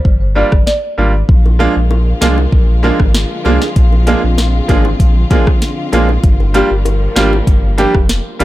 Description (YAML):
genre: dancehall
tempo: 97 BPM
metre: 4/4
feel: straight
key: unclear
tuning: A4 = 440 Hz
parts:
  - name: warm sub bass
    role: bass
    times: 0.1-8.4 s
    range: F1 to C2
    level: -14 LUFS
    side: equal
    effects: none
  - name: afro-pop drum kit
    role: drums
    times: 0.1-8.4 s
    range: hi-hat, kick drum, rim click, snare drum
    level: -12 LUFS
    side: equal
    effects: none
  - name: buzzing marimba with medium mallets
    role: melody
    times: 0.4-1.1 s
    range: D5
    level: -19 LUFS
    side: equal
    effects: digital delay
  - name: bright grand piano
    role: accompaniment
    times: 0.4-8.4 s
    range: G3 to G4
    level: -18 LUFS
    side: right 2 dB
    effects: sidechain pumping
  - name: warm studio string section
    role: sustained chords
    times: 1.3-8.4 s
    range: D3 to F4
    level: -22 LUFS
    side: left 1 dB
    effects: sidechain pumping
  - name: bongos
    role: percussion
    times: 1.5-8.4 s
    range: none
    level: -26 LUFS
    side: left 5 dB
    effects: none
  - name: nylon-string guitar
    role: arpeggios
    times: 1.6-8.4 s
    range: F3 to Ab4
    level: -19 LUFS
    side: right 1 dB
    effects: none
room: small room reverb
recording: dark, warm production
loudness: -9 LUFS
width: side -16 dB against mid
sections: 0.0-1.3 A section; 1.3-8.4 B section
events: none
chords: 0.0 Gm7; 1.3 Bb7; 6.2 Gm7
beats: 0.05 0.67 | 1.29 1.91 2.53 3.14 | 3.76 4.38 5.00 5.62 | 6.24 6.86 7.47 8.09